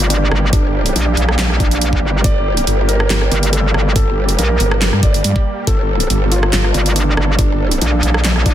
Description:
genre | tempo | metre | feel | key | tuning
heavy wobble dubstep | 140 BPM | 4/4 | half-time | G minor | A4 = 443 Hz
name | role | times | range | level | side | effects
supersaw chords | sustained chords | 0.0-8.5 s | G3 to A4 | -24 LUFS | right 1 dB | sidechain pumping, low-pass filter
metallic wobble bass | bass | 0.0-8.5 s | G1 to Bb1 | -15 LUFS | equal | chorus, overdrive
dubstep drum kit | drums | 0.0-8.5 s | handclaps, hi-hat, rim click, snare drum | -19 LUFS | right 1 dB | none
felt-muted upright piano | melody | 0.1-8.5 s | D4 to D5 | -21 LUFS | right 1 dB | ping-pong delay
growl bass | bass | 0.5-7.8 s | G1 to G2 | -16 LUFS | equal | distortion, chorus, overdrive
electronic kick drum | drums | 0.5-8.5 s | none | -15 LUFS | equal | none
room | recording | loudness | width
digital ambience | dense, heavily limited modern master | -12 LUFS | side -11 dB against mid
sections
0.0-8.5 A section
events
none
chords
0.0 Gmadd9

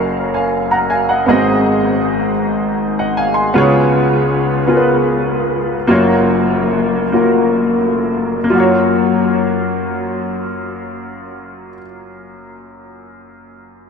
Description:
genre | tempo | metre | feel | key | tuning
gospel | 42-53 BPM (dotted quarters) | 6/8 | straight | F# major | A4 = 440 Hz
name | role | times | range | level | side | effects
clear grand piano | solo | 0.0-13.9 s | F#1 to B#5 | -13 LUFS | left 1 dB | analog chorus, analog delay
room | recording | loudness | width
wet huge ambient reverb, RT60 5.1 s | dreamy mix soaked in reverb | -12 LUFS | side -6 dB against mid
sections
0.0-8.5 A section; 8.5-11.4 B section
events
slowing down 3.6-8.5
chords
0.0 F#maj7; 1.3 G#7; 3.6 C#7; 5.9 F#maj7

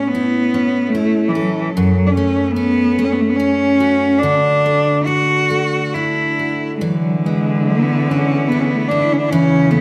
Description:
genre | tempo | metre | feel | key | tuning
celtic folk, Celtic slow air | 72 BPM | 3/4 | rubato | E mixolydian | A4 = 440 Hz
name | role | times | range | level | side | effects
rich cello | melody | 0.0-9.8 s | E3 to F#4 | -18 LUFS | equal | none
picked steel-string acoustic guitar | accompaniment | 0.0-9.8 s | F#2 to A4 | -22 LUFS | equal | none
clear cello | second line | 6.8-9.8 s | C#3 to D3 | -23 LUFS | equal | none
warm symphonic string section | sustained chords | 6.8-9.8 s | E2 to E4 | -30 LUFS | equal | none
room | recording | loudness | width
moderate scoring stage reverb, RT60 1.8 s | dark, warm production | -16 LUFS | mono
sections
0.0-6.8 A section; 6.8-9.8 B section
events
none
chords
0.0 A; 1.7 F#m; 4.2 Dadd9; 6.8 E7

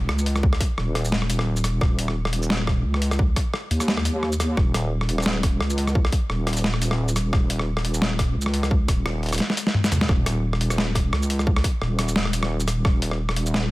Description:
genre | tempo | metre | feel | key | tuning
half-time drum and bass | 174 BPM | 4/4 | swing 55% on 16ths, half-time | unclear | A4 = 439 Hz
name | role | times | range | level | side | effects
deep soft wobble bass | bass | 0.0-13.7 s | Eb1 to Eb2 | -23 LUFS | equal | chorus, tube saturation
boom bap sampler-style drum kit | drums | 0.1-13.6 s | hi-hat, rim click, shaker, snare drum, toms | -25 LUFS | equal | studio ambience
electronic kick drum | drums | 0.4-12.9 s | none | -21 LUFS | equal | overdrive, studio ambience
room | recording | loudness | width
digital ambience | none | -20 LUFS | side -19 dB against mid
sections
0.0-13.7 A section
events
drum fill 9.4-10.1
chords
none

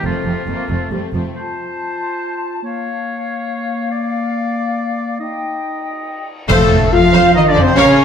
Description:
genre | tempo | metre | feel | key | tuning
cinematic, heroic adventure film score | 140 BPM | 3/4 | straight | F mixolydian | A4 = 440 Hz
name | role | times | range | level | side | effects
rich symphonic violin section | melody | 0.0-1.4, 6.5-8.0 s | C4 to F5 | -22 LUFS | left 3 dB | none
clear oboe | second line | 0.0-6.3 s | F4 to Eb5 | -26 LUFS | right 2 dB | none
warm symphonic violin section | second line | 0.0-1.4, 6.5-8.0 s | A3 to F5 | -24 LUFS | left 1 dB | none
rich symphonic viola section | accompaniment | 0.0-1.2, 6.5-8.0 s | F3 to Db5 | -22 LUFS | right 2 dB | none
mellow French horn section | sustained chords | 0.0-1.1, 6.5-8.0 s | A3 to A4 | -16 LUFS | left 1 dB | none
rich symphonic double bass section | bass | 0.0-1.2, 6.5-7.8 s | F1 to F2 | -21 LUFS | right 3 dB | none
rich symphonic cello section | bass | 0.1-1.2, 6.5-8.0 s | F2 to F3 | -19 LUFS | right 2 dB | none
dark clarinet | second line | 1.4-8.0 s | Bb3 to F5 | -22 LUFS | left 2 dB | none
small flute group | second line | 1.4-8.0 s | A4 to A5 | -24 LUFS | left 5 dB | none
cymbal swell, clash cymbals and concert bass drum | percussion | 3.9-7.3 s | none | -22 LUFS | equal | none
mellow trumpet section | stabs | 6.5-8.0 s | A4 to F5 | -20 LUFS | right 2 dB | none
timpani | percussion | 6.5-7.1 s | F2 | -20 LUFS | equal | none
room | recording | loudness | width
wet scoring stage reverb, RT60 1.7 s | none | -15 LUFS | side -8 dB against mid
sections
0.0-1.4 A section; 1.4-6.5 B section; 6.5-8.0 A section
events
band accent 6.5-6.9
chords
0.0 F; 2.6 Bbm; 3.9 Bb; 5.2 Eb; 6.5 F

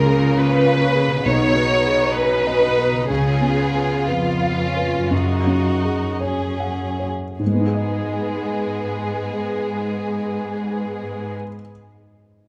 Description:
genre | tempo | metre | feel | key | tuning
cinematic, emotional film score for orchestra | 49-70 BPM | 4/4 | rubato | G# dorian | A4 = 440 Hz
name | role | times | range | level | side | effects
rich studio violin section | melody | 0.0-11.3 s | E#4 to C#5 | -24 LUFS | equal | none
rich studio violin section | second line | 0.0-11.4 s | G#3 to G#4 | -29 LUFS | equal | none
dark grand piano | accompaniment | 0.0-12.5 s | B1 to F#5 | -25 LUFS | equal | none
concert harp | arpeggios | 0.0-11.7 s | F#2 to D#5 | -32 LUFS | equal | none
rich studio cello section | bass | 0.0-11.3 s | E#2 to C#3 | -27 LUFS | equal | none
room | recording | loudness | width
light reverb | close, detailed microphones | -20 LUFS | mono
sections
0.0-7.4 A section; 7.4-12.2 B section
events
slowing down 0.0-7.4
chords
0.0 C#6; 1.2 G#m/B; 3.1 C#7; 5.1 F#sus2; 7.4 G#m

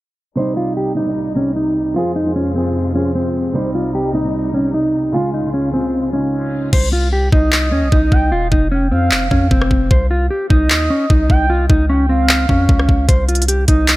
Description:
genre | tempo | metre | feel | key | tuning
hip hop, trap | 151 BPM | 4/4 | half-time | C phrygian | A4 = 440 Hz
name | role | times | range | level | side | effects
mellow electric guitar | melody | 0.4-14.0 s | C4 to C5 | -18 LUFS | equal | harmonic tremolo, low-pass filter
dark grand piano | accompaniment | 0.4-6.8 s | C3 to Ab4 | -21 LUFS | right 2 dB | low-pass filter
warm symphonic string section | sustained chords | 0.4-6.7 s | C2 to F4 | -26 LUFS | left 1 dB | none
long sustained 808-style bass | bass | 6.7-14.0 s | Eb1 to F2 | -16 LUFS | equal | none
trap drum kit | drums | 6.7-14.0 s | crash cymbal, handclaps, hi-hat, kick drum, rim click | -14 LUFS | equal | none
gliding portamento lead | second line | 7.3-14.0 s | Eb5 to G5 | -23 LUFS | right 3 dB | chorus, digital delay
room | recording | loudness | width
digital ambience | low-pass filter | -13 LUFS | side -18 dB against mid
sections
0.4-6.7 A section; 6.7-14.0 B section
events
filter sweep 0.4-6.7; hi-hats muted 6.7-13.1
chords
0.4 Cm; 2.0 Fm; 3.5 Cm; 5.1 Db; 6.7 Cm; 8.3 F5; 9.9 Cm; 11.5 Db; 13.1 Cm

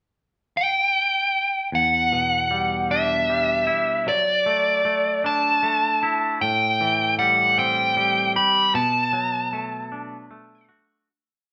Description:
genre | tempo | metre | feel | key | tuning
post-rock | 51 BPM (dotted quarters) | 6/8 | straight | E minor | A4 = 438 Hz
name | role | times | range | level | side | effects
dark smooth lead guitar | melody | 0.6-10.7 s | D5 to B5 | -22 LUFS | equal | overdrive
twangy electric guitar | arpeggios | 1.7-11.1 s | E2 to G4 | -29 LUFS | equal | none
room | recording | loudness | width
wet large studio reverb, RT60 0.9 s | band playing live in one room | -21 LUFS | mono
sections
0.0-1.7 pickup bar; 1.7-11.1 A section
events
fade-out 8.7-11.1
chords
0.0 N.C.; 1.7 Em7; 4.1 Dadd9/F#; 6.4 Am7; 8.7 Bm7

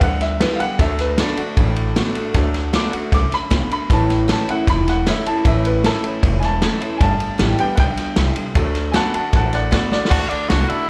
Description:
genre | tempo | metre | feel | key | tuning
rockabilly | 154 BPM | 4/4 | straight | D major | A4 = 440 Hz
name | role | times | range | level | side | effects
clear upright piano | accompaniment | 0.0-10.8 s | E3 to D6 | -26 LUFS | equal | none
picked steel-string acoustic guitar | accompaniment | 0.0-10.9 s | F#2 to G4 | -29 LUFS | equal | slapback echo
electric guitar through a small old amp | riff | 0.0-10.9 s | G2 to B3 | -27 LUFS | equal | subtle chorus, slapback echo
upright bass | bass | 0.0-10.7 s | E1 to D2 | -23 LUFS | equal | none
vintage drum kit | drums | 0.0-10.8 s | crash cymbal, kick drum, ride cymbal, snare drum | -23 LUFS | equal | none
raspy tenor saxophone | melody | 10.1-10.9 s | D4 to F#4 | -24 LUFS | equal | none
room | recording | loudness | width
little or no reverb | live gig heard through the venue's PA, club reverb | -18 LUFS | mono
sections
0.0-10.1 A section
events
upright piano solo 0.0-10.1; drum fill 9.9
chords
0.0 G; 0.8 D; 3.9 A; 7.0 G; 8.6 D

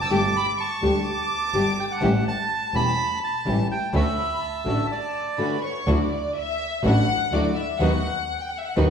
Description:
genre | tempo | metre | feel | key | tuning
tango | 125 BPM | 4/4 | rubato | D major | A4 = 440 Hz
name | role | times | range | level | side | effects
bandoneon | melody | 0.0-5.6 s | D5 to B5 | -27 LUFS | right 4 dB | none
warm studio violin section | second line | 0.0-8.8 s | B4 to E6 | -28 LUFS | left 2 dB | none
clear double bass | bass | 0.0-8.9 s | E1 to D#2 | -25 LUFS | right 1 dB | none
nylon-string guitar | accompaniment | 0.1-8.9 s | D3 to B4 | -27 LUFS | left 3 dB | none
rich chamber string section | stabs | 0.1-8.9 s | A3 to G4 | -31 LUFS | equal | none
room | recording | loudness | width
wet large studio reverb, RT60 1.2 s | band playing live in one room | -21 LUFS | side -7 dB against mid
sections
0.0-5.9 A section; 5.9-8.9 B section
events
break 4.9-5.9; violin section solo 5.9-8.9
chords
0.1 Gsus2; 2.0 A7; 3.9 Dmaj7; 5.9 Dadd9; 7.8 B/D#

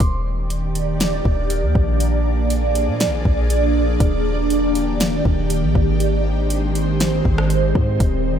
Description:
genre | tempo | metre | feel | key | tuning
hip hop, atmospheric cloud-rap | 120 BPM | 4/4 | half-time | Eb major | A4 = 442 Hz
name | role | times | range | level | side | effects
ethereal airy pad | sustained chords | 0.0-8.4 s | Eb3 to D5 | -20 LUFS | right 2 dB | ensemble chorus, built-in reverb, phaser, sidechain pumping
warm 808-style bass | bass | 0.0-8.4 s | Eb1 to Bb2 | -20 LUFS | equal | none
smooth R&B drum kit | drums | 0.0-8.1 s | hi-hat, kick drum, rim click, snare drum | -21 LUFS | equal | none
room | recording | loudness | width
light reverb | none | -16 LUFS | side -9 dB against mid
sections
0.0-8.4 A section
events
none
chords
0.0 Ebmaj7; 2.0 Bb7; 4.0 Ebmaj7; 6.0 Abmaj7

